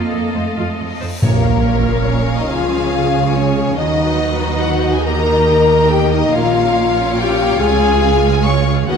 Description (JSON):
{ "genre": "cinematic", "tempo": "141 BPM", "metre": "3/4", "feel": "straight", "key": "Bb minor", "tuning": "A4 = 441 Hz", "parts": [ { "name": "warm symphonic violin section", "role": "melody", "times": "0.0-9.0 s", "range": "Bb4 to Db6", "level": "-23 LUFS", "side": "left 3 dB", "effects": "none" }, { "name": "rich symphonic violin section", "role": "second line", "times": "0.0-9.0 s", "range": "A4 to Ab5", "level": "-25 LUFS", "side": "left 5 dB", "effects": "none" }, { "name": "clear symphonic viola section", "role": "accompaniment", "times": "0.0-9.0 s", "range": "F3 to Eb5", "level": "-25 LUFS", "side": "right 1 dB", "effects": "none" }, { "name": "warm French horn section", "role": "sustained chords", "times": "0.0-9.0 s", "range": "Bb3 to Db5", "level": "-17 LUFS", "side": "left 4 dB", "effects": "none" }, { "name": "warm symphonic cello section", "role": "bass", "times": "0.0-9.0 s", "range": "Db2 to Bb3", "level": "-21 LUFS", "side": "right 4 dB", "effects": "none" }, { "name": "cymbal swell and sub drop", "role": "sound effects", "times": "1.0-2.5 s", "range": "none", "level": "-23 LUFS", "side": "equal", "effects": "none" }, { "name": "rich symphonic double bass section", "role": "bass", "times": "0.1-9.0 s", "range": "Bb1 to F2", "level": "-20 LUFS", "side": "right 5 dB", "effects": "none" }, { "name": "warm symphonic string section", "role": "sustained chords", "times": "1.2-9.0 s", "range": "F#3 to F#5", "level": "-24 LUFS", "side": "left 1 dB", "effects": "none" }, { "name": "timpani", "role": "percussion", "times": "1.2-1.8 s", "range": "Bb2", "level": "-19 LUFS", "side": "right 1 dB", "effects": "none" } ], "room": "wet scoring stage reverb, RT60 1.9 s", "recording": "none", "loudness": "-13 LUFS", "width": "side -6 dB against mid", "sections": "0.0-1.2 A section; 1.2-9.0 B section", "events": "cymbal swell 1.0; impact 1.2-2.5", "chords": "0.0 F7; 1.2 Bbm; 2.5 Db; 3.8 B/D#; 5.1 Eb; 6.3 Bbm; 7.6 Db" }